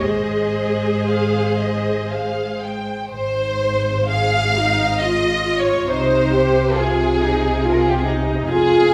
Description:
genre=classical, slow romantic movement for string orchestra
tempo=56-71 BPM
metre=3/4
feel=rubato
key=Ab major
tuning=A4 = 443 Hz
part: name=warm studio violin section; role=melody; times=0.0-8.9 s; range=Ab4 to G5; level=-28 LUFS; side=equal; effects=none
part: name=rich studio violin section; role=second line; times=0.0-8.9 s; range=G4 to F5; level=-24 LUFS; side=equal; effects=none
part: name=rich studio viola section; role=accompaniment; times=0.0-8.9 s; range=Ab3 to Ab4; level=-24 LUFS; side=equal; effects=none
part: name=clear studio cello section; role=bass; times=0.0-8.9 s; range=F2 to Ab4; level=-26 LUFS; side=equal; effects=none
part: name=dark studio double bass section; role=bass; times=0.0-8.9 s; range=F1 to C2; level=-28 LUFS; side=equal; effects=none
room=wet scoring stage reverb, RT60 1.6 s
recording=none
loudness=-19 LUFS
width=mono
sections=0.0-3.1 A section; 3.1-8.9 B section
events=none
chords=0.0 Ab; 5.9 Ab/C

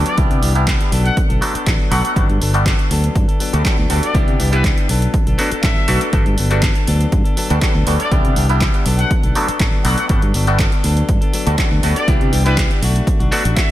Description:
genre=filtered disco house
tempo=121 BPM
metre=4/4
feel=straight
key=G major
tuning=A4 = 445 Hz
part: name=bright clav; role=accompaniment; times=0.0-13.4 s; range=F#3 to F#4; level=-22 LUFS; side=equal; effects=phaser, sidechain pumping, low-pass filter
part: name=direct-recorded clean electric guitar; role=riff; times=0.0-13.7 s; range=E3 to A4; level=-24 LUFS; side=left 3 dB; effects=sidechain pumping, low-pass filter
part: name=muted trumpet section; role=melody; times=0.1-13.7 s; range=B4 to F#5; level=-25 LUFS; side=left 1 dB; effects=sidechain pumping, low-pass filter, tape echo
part: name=punchy analog drum machine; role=drums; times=0.1-13.7 s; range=handclaps, hi-hat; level=-24 LUFS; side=right 1 dB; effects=overdrive, sidechain pumping on hats, sidechain pumping on cymbals
part: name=modern bright fingered electric bass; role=bass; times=0.2-13.5 s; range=G1 to C3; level=-17 LUFS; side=equal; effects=sidechain pumping, low-pass filter
part: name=electronic kick drum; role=drums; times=0.2-13.7 s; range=none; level=-17 LUFS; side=equal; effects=overdrive
room=light reverb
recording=none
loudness=-13 LUFS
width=side -14 dB against mid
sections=0.0-13.7 A section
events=none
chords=0.2 Cmaj9; 0.9 Bm7; 2.2 Gmaj9; 4.1 Cmaj9; 4.9 Bm7; 6.1 Gmaj9; 8.1 Cmaj9; 8.9 Bm7; 10.1 Gmaj9; 12.1 Cmaj9; 12.8 Bm7

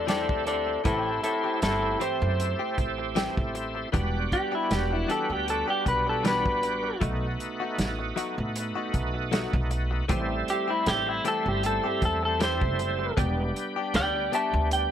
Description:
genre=straight-eighth soul blues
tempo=78 BPM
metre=4/4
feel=swing 55% on 16ths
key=E minor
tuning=A4 = 438 Hz
part: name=electric guitar through a small old amp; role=melody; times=0.0-14.9 s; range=E4 to A5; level=-27 LUFS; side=left 1 dB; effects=none
part: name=bright tonewheel organ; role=accompaniment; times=0.0-14.9 s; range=G3 to G4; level=-31 LUFS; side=right 2 dB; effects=overdrive, chorus vibrato, slow rotary speaker
part: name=upright bass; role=bass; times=0.0-14.9 s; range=E1 to A2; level=-31 LUFS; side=equal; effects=none
part: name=direct-recorded clean electric guitar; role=stabs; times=0.1-14.6 s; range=E3 to G4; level=-35 LUFS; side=left 5 dB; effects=lush chorus
part: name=warm soul drum kit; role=drums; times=0.1-14.9 s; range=hi-hat, kick drum, snare drum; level=-29 LUFS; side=equal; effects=none
room=little or no reverb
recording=none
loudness=-24 LUFS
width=side -10 dB against mid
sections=0.0-14.9 A section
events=clean electric guitar solo 0.0-14.9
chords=0.0 Am7; 3.9 Em7; 7.0 B7; 10.1 Am7; 13.2 Em7

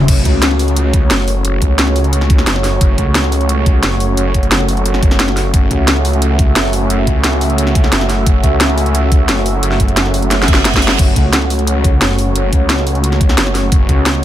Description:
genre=dark technical drum and bass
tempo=176 BPM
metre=4/4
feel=straight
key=F# minor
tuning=A4 = 440 Hz
part: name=dark analog pad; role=sustained chords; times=0.0-14.2 s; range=A3 to E5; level=-18 LUFS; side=right 1 dB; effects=chorus, sidechain pumping
part: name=snarling distorted saw bass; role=bass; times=0.0-14.2 s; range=F#1 to C#2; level=-15 LUFS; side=equal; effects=tube saturation, sidechain pumping
part: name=drum and bass drum kit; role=drums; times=0.0-14.2 s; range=crash cymbal, hi-hat, snare drum, toms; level=-16 LUFS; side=equal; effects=overdrive
part: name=electronic kick drum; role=drums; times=0.1-14.0 s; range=none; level=-12 LUFS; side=equal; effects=overdrive
part: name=reverse cymbal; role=sound effects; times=10.5-11.0 s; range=none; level=-22 LUFS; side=right 5 dB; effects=none
room=little or no reverb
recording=none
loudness=-10 LUFS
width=side -12 dB against mid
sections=0.1-14.2 A section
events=drop 0.1-14.2; drum fill 10.3-11.0; reverse cymbal 10.5-11.0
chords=0.1 F#m

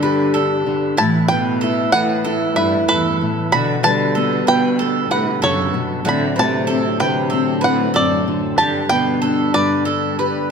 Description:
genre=acoustic folk duo or small band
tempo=95 BPM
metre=4/4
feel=straight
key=unclear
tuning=A4 = 440 Hz
part: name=bluegrass banjo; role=melody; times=0.0-10.5 s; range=B4 to B5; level=-19 LUFS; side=right 1 dB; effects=none
part: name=warm cello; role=second line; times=0.0-10.5 s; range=E2 to E3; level=-22 LUFS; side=right 2 dB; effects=tape echo
part: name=fingerpicked steel-string acoustic guitar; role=accompaniment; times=0.0-10.5 s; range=G2 to G4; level=-20 LUFS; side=left 3 dB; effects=none
part: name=tonewheel organ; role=sustained chords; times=0.0-10.5 s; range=A2 to B4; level=-28 LUFS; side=left 1 dB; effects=slow rotary speaker, overdrive
part: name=bowl-back mandolin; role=arpeggios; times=0.0-10.5 s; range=E4 to B4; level=-23 LUFS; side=right 3 dB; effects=none
room=moderate scoring stage reverb, RT60 1.6 s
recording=none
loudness=-15 LUFS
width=side -6 dB against mid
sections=0.0-10.5 A section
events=none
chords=0.0 G; 1.0 Asus2; 3.5 Gmaj7/B; 6.1 D7/A; 8.6 G

